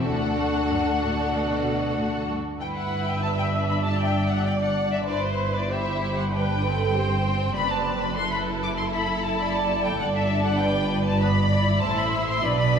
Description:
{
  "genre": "quick classical-period movement for string orchestra",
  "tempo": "97 BPM",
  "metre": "4/4",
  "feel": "straight",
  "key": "G major",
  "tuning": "A4 = 441 Hz",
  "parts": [
    { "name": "clear studio violin section", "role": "melody", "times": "0.0-12.8 s", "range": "C5 to D6", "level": "-28 LUFS", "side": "left 3 dB", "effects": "none" },
    { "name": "clear studio violin section", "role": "second line", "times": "0.0-12.8 s", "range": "B3 to D5", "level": "-28 LUFS", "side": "equal", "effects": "none" },
    { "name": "rich studio viola section", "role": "accompaniment", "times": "0.0-12.8 s", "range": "A3 to E5", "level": "-29 LUFS", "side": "equal", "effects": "none" },
    { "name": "rich studio cello section", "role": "bass", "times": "0.0-12.8 s", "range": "D2 to B2", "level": "-30 LUFS", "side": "right 2 dB", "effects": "none" },
    { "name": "rich studio double bass section", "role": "bass", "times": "0.0-12.8 s", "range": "F#1 to D2", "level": "-28 LUFS", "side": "right 1 dB", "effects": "none" }
  ],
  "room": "wet recital hall reverb, RT60 1.5 s",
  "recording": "recorded in a church or concert hall",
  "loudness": "-22 LUFS",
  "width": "side -7 dB against mid",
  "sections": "0.0-2.6 A section; 2.6-12.8 B section",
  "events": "none",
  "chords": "0.0 D; 2.6 G; 5.1 Am11/G; 7.5 D7/F#; 10.0 G"
}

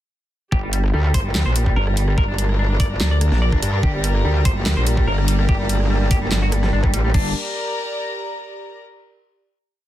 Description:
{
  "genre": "heavy wobble dubstep",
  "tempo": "145 BPM",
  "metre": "4/4",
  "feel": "half-time",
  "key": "G minor",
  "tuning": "A4 = 440 Hz",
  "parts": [
    { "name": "semi-hollow electric guitar", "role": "melody", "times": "0.5-7.3 s", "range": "G3 to D5", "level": "-27 LUFS", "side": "left 2 dB", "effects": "digital delay" },
    { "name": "wobble bass", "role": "bass", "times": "0.5-7.3 s", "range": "G1 to D2", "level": "-18 LUFS", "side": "equal", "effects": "chorus, overdrive" },
    { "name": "electronic kick drum", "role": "drums", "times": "0.5-7.2 s", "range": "none", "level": "-20 LUFS", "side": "equal", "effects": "none" },
    { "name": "warm studio string section", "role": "texture", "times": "0.5-8.8 s", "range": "G4 to Bb5", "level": "-29 LUFS", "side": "equal", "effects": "sidechain pumping" },
    { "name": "dubstep drum kit", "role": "drums", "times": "0.7-7.2 s", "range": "crash cymbal, handclaps, hi-hat, rim click, snare drum", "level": "-26 LUFS", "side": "equal", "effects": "none" },
    { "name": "metallic wobble bass", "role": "bass", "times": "0.9-7.1 s", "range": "G1 to G2", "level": "-19 LUFS", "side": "equal", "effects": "distortion, chorus, overdrive" },
    { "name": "supersaw chords", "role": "sustained chords", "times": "3.8-7.3 s", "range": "G3 to D4", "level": "-29 LUFS", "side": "right 1 dB", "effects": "vintage 12-bit sampler grit, sidechain pumping" }
  ],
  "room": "little or no reverb",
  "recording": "dense, heavily limited modern master",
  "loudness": "-17 LUFS",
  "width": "side -13 dB against mid",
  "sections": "0.5-7.1 drop; 7.1-8.8 final chord",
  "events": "drop 0.5-7.1",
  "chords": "0.5 Gm"
}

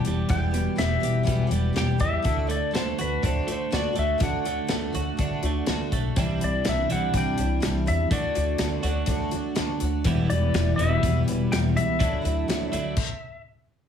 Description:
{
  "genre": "folk rock and heartland rock",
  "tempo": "123 BPM",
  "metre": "4/4",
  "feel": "straight",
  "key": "unclear",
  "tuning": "A4 = 440 Hz",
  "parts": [
    { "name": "clean lap steel guitar", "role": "melody", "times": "0.0-13.4 s", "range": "B4 to G5", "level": "-29 LUFS", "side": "left 3 dB", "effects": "none" },
    { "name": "picked twelve-string acoustic guitar", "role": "accompaniment", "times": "0.0-13.0 s", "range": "E2 to G4", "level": "-31 LUFS", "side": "left 6 dB", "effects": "analog chorus" },
    { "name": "twelve-string electric guitar", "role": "riff", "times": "0.0-13.0 s", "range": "E2 to G4", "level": "-29 LUFS", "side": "right 9 dB", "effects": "none" },
    { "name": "natural country drum kit", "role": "drums", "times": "0.0-13.1 s", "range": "crash cymbal, hi-hat, kick drum, snare drum", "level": "-29 LUFS", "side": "equal", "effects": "none" },
    { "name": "upright bass", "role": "bass", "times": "0.1-13.0 s", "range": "E1 to E2", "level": "-27 LUFS", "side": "left 1 dB", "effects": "none" }
  ],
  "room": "light reverb",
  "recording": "studio ambience",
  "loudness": "-22 LUFS",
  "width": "side -8 dB against mid",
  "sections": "0.0-6.2 A section; 6.2-13.9 B section",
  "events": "stop 13.0-13.9",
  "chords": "0.0 Em; 2.3 D; 6.2 Cadd9; 8.1 D; 10.1 Em; 12.0 Dadd9"
}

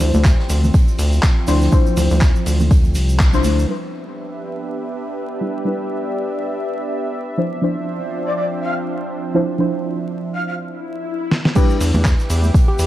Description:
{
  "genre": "deep house",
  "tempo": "122 BPM",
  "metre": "4/4",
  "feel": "swing 56% on 16ths",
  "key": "unclear",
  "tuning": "A4 = 440 Hz",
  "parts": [
    { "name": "deep mellow chord stab", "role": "stabs", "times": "0.0-12.9 s", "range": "F3 to C5", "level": "-22 LUFS", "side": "equal", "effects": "chorus, sidechain pumping, tape echo" },
    { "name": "rubbery square bass", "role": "bass", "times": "0.0-3.7, 11.8-12.9 s", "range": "C2 to E2", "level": "-16 LUFS", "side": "equal", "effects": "sidechain pumping" },
    { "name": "dusty soul sampler-style drum kit", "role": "drums", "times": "0.0-3.6, 11.3-12.9 s", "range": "crash cymbal, handclaps, hi-hat, snare drum", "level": "-24 LUFS", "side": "equal", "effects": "none" },
    { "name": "raw garage drum kit", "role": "drums", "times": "0.0-3.6, 11.6-12.9 s", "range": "hi-hat, snare drum", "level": "-36 LUFS", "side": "right 2 dB", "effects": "sidechain pumping on hats, high-pass filter on hats, high-pass filter on snare, high-pass filter on room" },
    { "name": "congas", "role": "percussion", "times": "0.0-3.6, 11.9-12.5 s", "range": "none", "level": "-23 LUFS", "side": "right 1 dB", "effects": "none" },
    { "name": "egg shaker", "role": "percussion", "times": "0.0-3.7, 11.6-12.9 s", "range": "none", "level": "-34 LUFS", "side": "right 2 dB", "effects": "none" },
    { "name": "warbly tape-like pad", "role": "texture", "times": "0.0-12.9 s", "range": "F3 to E5", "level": "-27 LUFS", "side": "equal", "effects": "chorus, built-in reverb, sidechain pumping" },
    { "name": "electronic kick drum", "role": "drums", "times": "0.2-3.3, 11.6-12.7 s", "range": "none", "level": "-14 LUFS", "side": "equal", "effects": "none" },
    { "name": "warm analog pad", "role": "sustained chords", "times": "4.0-12.9 s", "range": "F3 to D6", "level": "-28 LUFS", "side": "right 2 dB", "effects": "chorus, sidechain pumping" },
    { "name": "breathy flute-like synth lead", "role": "melody", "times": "8.3-10.5 s", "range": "D5 to F5", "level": "-25 LUFS", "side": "left 1 dB", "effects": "ensemble chorus, analog delay" },
    { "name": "swell", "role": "sound effects", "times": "10.8-11.6 s", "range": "none", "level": "-28 LUFS", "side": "left 6 dB", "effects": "none" },
    { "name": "bright tine electric piano", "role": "melody", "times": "11.6-12.9 s", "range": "G4", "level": "-27 LUFS", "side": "left 1 dB", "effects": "vintage 12-bit sampler grit, tape echo" }
  ],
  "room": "light reverb",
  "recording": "vinyl crackle",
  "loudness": "-16 LUFS",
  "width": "side -14 dB against mid",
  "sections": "0.0-3.7 A section; 3.7-11.6 B section; 11.6-12.9 C section",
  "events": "filter sweep on synth stab 0.0-3.7, 3.7-11.6; band accent 3.2; swell 10.8-11.6; drum fill 11.3; drop 11.6-12.9",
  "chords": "0.0 Dm9; 3.7 Em7; 7.4 Dm9; 11.6 Em7"
}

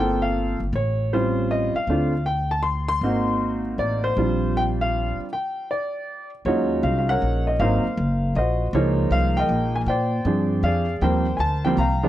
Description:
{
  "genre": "jazz piano trio",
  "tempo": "158 BPM",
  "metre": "3/4",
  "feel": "swing 66% on 8ths",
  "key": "Bb major",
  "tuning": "A4 = 435 Hz",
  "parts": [
    { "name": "warm concert grand piano", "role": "melody", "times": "0.0-12.1 s", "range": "F3 to C6", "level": "-22 LUFS", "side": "equal", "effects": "none" },
    { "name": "upright bass", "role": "bass", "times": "0.0-12.1 s", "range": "Gb1 to Bb2", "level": "-24 LUFS", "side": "equal", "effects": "none" }
  ],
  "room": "small room reverb",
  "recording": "dry, close 1970s-style studio recording",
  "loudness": "-20 LUFS",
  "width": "side -13 dB against mid",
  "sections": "0.0-6.5 A section; 6.5-12.1 B section",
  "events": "stop 5.3-6.5",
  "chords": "0.0 Gm11; 0.7 A7alt; 1.9 Dm7; 3.0 Ab9; 4.2 Bb69; 6.5 Ebm11; 7.6 Ab9; 8.7 Db69; 9.9 Bb9; 11.0 Eb69"
}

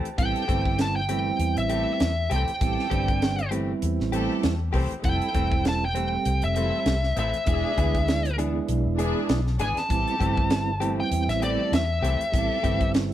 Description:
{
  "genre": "straight-eighth soul blues",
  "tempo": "99 BPM",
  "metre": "4/4",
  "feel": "swing 56% on 16ths",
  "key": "A minor",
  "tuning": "A4 = 440 Hz",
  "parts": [
    { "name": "mellow tonewheel organ", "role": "accompaniment", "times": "0.0-13.1 s", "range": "G3 to A5", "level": "-29 LUFS", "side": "right 5 dB", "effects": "slow rotary speaker, chorus vibrato" },
    { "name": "direct-recorded clean electric guitar", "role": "stabs", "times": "0.0-12.8 s", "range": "E3 to G#4", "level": "-34 LUFS", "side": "left 5 dB", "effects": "spring reverb" },
    { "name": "vintage muted fingered electric bass", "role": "bass", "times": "0.0-13.1 s", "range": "E1 to E2", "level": "-27 LUFS", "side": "left 1 dB", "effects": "none" },
    { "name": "tight funk drum kit", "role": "drums", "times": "0.1-13.1 s", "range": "hi-hat, kick drum, snare drum", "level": "-27 LUFS", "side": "equal", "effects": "none" },
    { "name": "smooth overdriven lead guitar", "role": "melody", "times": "0.2-12.9 s", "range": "D5 to A5", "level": "-27 LUFS", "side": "equal", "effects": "none" },
    { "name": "clear studio string section", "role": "sustained chords", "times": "0.2-12.9 s", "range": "A3 to A4", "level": "-35 LUFS", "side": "left 3 dB", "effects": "none" }
  ],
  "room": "light reverb",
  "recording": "band playing live in one room",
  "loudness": "-22 LUFS",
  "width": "side -12 dB against mid",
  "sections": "0.0-13.1 A section",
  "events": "tonewheel organ fill 0.0; lead electric guitar solo 0.0-13.1",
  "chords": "0.0 Am7; 5.0 Fmaj7; 7.5 E7; 9.9 Am7"
}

